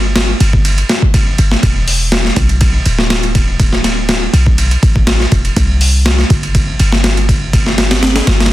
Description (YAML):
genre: breakbeat, breaks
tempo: 122 BPM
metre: 4/4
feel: straight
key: E minor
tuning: A4 = 440 Hz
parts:
  - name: warm 808-style bass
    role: bass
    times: 0.0-8.5 s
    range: D1 to C2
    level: -13 LUFS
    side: equal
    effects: tube saturation
  - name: breakbeat sampler-style drum kit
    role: drums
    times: 0.2-8.5 s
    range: hi-hat, kick drum, ride cymbal, snare drum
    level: -12 LUFS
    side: equal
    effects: overdrive
room: little or no reverb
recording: dense, heavily limited modern master, vinyl crackle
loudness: -10 LUFS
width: side -15 dB against mid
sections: 0.0-8.5 A section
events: none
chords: none